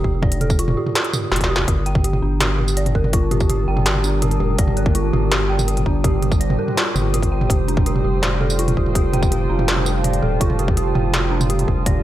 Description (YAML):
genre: half-time drum and bass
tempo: 165 BPM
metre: 4/4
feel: half-time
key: G minor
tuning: A4 = 435 Hz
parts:
  - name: dark detuned synth bell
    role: arpeggios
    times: 0.0-12.0 s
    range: D4 to G5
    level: -24 LUFS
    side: right 2 dB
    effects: chorus, digital delay
  - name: saturated sub bass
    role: bass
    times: 0.0-12.0 s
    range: Eb1 to G1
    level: -21 LUFS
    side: equal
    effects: none
  - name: electronic kick drum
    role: drums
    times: 0.0-11.9 s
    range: none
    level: -20 LUFS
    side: equal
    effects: none
  - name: industrial drum kit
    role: drums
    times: 0.2-11.9 s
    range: hi-hat, snare drum, tambourine, toms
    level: -22 LUFS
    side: equal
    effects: none
  - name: deep dark ambient pad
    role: sustained chords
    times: 2.8-12.0 s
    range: G3 to A5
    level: -27 LUFS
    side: right 2 dB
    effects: chorus, built-in reverb, sidechain pumping
  - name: metallic inharmonic drone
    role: texture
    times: 3.1-12.0 s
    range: G3 to G4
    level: -31 LUFS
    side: left 4 dB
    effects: chorus, built-in reverb
room: little or no reverb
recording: none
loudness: -16 LUFS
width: side -13 dB against mid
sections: 0.0-12.0 A section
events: drum fill 1.3-1.7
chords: 0.0 Fadd9; 1.7 Gm; 7.5 Fadd9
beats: | 0.23 0.59 0.95 1.32 | 1.68 2.04 2.41 2.77 | 3.13 3.50 3.86 4.23 | 4.59 4.95 5.32 5.68 | 6.04 6.41 6.77 7.13 | 7.50 7.86 8.23 8.59 | 8.95 9.32 9.68 10.04 | 10.41 10.77 11.13 11.50 | 11.86